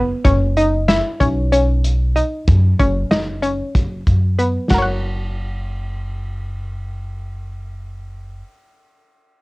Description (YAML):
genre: progressive instrumental, band music in an uneven meter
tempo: 188 BPM (eighths)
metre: 7/8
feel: straight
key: F# major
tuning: A4 = 441 Hz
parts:
  - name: analog pluck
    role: arpeggios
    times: 0.0-8.5 s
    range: B3 to F#5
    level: -19 LUFS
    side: left 1 dB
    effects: chorus, cassette tape
  - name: upright bass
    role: bass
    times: 0.0-8.4 s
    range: F#1 to F#2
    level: -19 LUFS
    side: equal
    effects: none
  - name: warm soul drum kit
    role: drums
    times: 0.2-4.9 s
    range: hi-hat, kick drum, ride cymbal, snare drum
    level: -19 LUFS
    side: equal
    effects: cassette tape
room: little or no reverb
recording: home recording on cassette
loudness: -15 LUFS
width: side -23 dB against mid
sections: 0.2-4.7 A section; 4.7-6.9 B section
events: drum fill 0.0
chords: 0.2 C#7(no3)/F#; 4.7 F#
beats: | 0.25 0.56 0.88 1.20 1.52 1.84 2.15 | 2.47 2.79 3.11 3.43 3.75 4.07 4.39 | 4.71 5.03 5.35 5.67 5.99 6.30 6.62